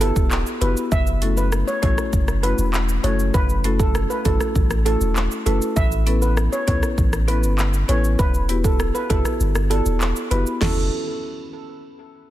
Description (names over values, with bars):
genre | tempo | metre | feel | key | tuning
dancehall | 99 BPM | 4/4 | straight | F# phrygian | A4 = 439 Hz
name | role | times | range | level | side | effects
steel pan | melody | 0.0-10.9 s | A4 to E5 | -26 LUFS | right 3 dB | ping-pong delay
marimba with medium mallets | accompaniment | 0.0-10.9 s | A3 to D5 | -26 LUFS | left 4 dB | none
punchy sub bass | bass | 0.0-10.9 s | E1 to C#2 | -21 LUFS | equal | none
pop drum kit | drums | 0.0-10.8 s | crash cymbal, handclaps, hi-hat, kick drum, rim click, shaker, snare drum, toms | -23 LUFS | equal | none
room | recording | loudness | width
digital ambience | dense, heavily limited modern master | -18 LUFS | side -14 dB against mid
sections
0.0-10.6 A section; 10.6-12.3 B section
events
kick muted 9.4-10.6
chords
0.0 Emadd9; 0.9 F#m7; 5.8 Aadd9; 8.2 Emadd9; 10.6 F#m7